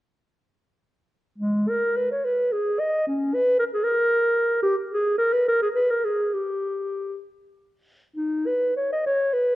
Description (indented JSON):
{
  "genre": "classical, baroque-style fantasia for unaccompanied clarinet",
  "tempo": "60-77 BPM (dotted quarters)",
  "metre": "6/8",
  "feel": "rubato",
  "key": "G# minor",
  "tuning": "A4 = 440 Hz",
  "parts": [
    { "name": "dark clarinet", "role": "solo", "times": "1.4-9.6 s", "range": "G#3 to D#5", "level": "-21 LUFS", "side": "equal", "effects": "none" }
  ],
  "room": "moderate recital hall reverb, RT60 1.4 s",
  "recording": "worn, warbling old tape, cassette tape, warbly pitch drift",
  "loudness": "-21 LUFS",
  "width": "side -16 dB against mid",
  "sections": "1.4-9.6 A section",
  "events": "none",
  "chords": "none"
}